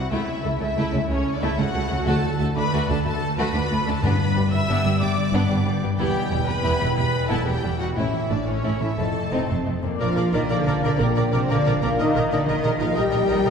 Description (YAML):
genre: cinematic, heroic adventure film score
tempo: 122 BPM (dotted quarters)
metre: 12/8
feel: straight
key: G major, Bb major from 10.0 s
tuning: A4 = 439 Hz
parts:
  - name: warm symphonic violin section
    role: melody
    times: 0.0-13.5 s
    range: Bb4 to E6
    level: -30 LUFS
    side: left 3 dB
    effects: none
  - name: rich symphonic viola section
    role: accompaniment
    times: 0.0-13.5 s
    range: C#4 to E5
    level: -30 LUFS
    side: right 1 dB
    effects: none
  - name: concert harp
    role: arpeggios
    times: 0.0-13.5 s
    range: E2 to D5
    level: -28 LUFS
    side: left 4 dB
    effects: none
  - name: warm symphonic double bass section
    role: bass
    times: 0.0-13.5 s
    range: E1 to D2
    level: -27 LUFS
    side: right 3 dB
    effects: none
  - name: rich chamber violin section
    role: second line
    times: 0.1-13.5 s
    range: G3 to Bb5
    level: -30 LUFS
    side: left 2 dB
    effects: none
  - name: rich studio cello section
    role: bass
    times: 0.1-13.5 s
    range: C#2 to G3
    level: -26 LUFS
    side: right 2 dB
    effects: none
  - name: timpani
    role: percussion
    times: 2.1-4.5 s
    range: G2 to D3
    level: -27 LUFS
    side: left 1 dB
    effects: none
  - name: clear clarinet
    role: second line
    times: 10.0-13.5 s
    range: Bb4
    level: -33 LUFS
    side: left 1 dB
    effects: none
  - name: mellow flute section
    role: second line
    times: 10.0-13.5 s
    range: Bb4 to G5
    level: -30 LUFS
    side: left 2 dB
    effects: none
  - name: warm oboe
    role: second line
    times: 10.0-13.5 s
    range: D5 to Eb5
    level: -32 LUFS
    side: right 2 dB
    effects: none
  - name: clear French horn section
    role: sustained chords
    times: 10.0-13.5 s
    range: Bb3 to G4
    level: -25 LUFS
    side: left 3 dB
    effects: none
  - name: warm trombone section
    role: sustained chords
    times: 10.0-13.5 s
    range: Eb3 to Eb4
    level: -31 LUFS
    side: right 1 dB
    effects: none
room: wet scoring stage reverb, RT60 2.1 s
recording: heard from further back in the room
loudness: -20 LUFS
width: side -6 dB against mid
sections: 0.0-10.0 A section; 10.0-13.5 B section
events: none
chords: 0.1 A/C#; 2.1 D; 4.0 G; 6.0 Em; 8.0 A; 9.0 F7; 10.0 Bb; 12.0 Eb/Bb